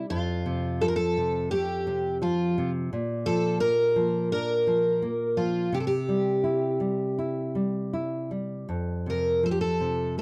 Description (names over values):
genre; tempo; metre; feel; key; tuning
fado-style ballad; 84 BPM; 4/4; uneven beats, rubato; unclear; A4 = 440 Hz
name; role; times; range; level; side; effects
picked twelve-string acoustic guitar; melody; 0.0-10.2 s; F4 to Bb4; -28 LUFS; equal; none
nylon-string guitar; accompaniment; 0.0-10.2 s; F2 to E4; -30 LUFS; equal; none
room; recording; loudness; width
light reverb; dry, close 1970s-style studio recording; -27 LUFS; mono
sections
0.0-10.2 A section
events
none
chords
0.1 F; 2.9 Bb; 5.7 C; 8.7 F